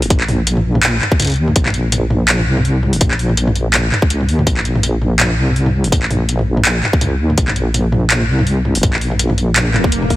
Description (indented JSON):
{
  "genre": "half-time drum and bass",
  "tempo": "165 BPM",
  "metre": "4/4",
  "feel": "swing 56% on 16ths, half-time",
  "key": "Bb minor",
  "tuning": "A4 = 440 Hz",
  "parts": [
    { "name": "deep soft wobble bass", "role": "bass", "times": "0.0-10.2 s", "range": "F1 to Eb2", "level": "-15 LUFS", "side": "equal", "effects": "chorus" },
    { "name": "drum and bass drum kit", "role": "drums", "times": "0.0-10.2 s", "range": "handclaps, hi-hat, toms", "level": "-16 LUFS", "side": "equal", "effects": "none" },
    { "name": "electronic kick drum", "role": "drums", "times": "0.1-10.2 s", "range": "none", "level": "-14 LUFS", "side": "equal", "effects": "none" },
    { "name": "swell", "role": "sound effects", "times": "9.7-10.2 s", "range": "none", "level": "-21 LUFS", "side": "left 1 dB", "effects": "none" }
  ],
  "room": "light reverb",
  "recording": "heavily compressed radio sound",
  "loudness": "-12 LUFS",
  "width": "side -16 dB against mid",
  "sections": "0.0-10.2 A section",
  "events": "swell 9.7-10.2",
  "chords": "none"
}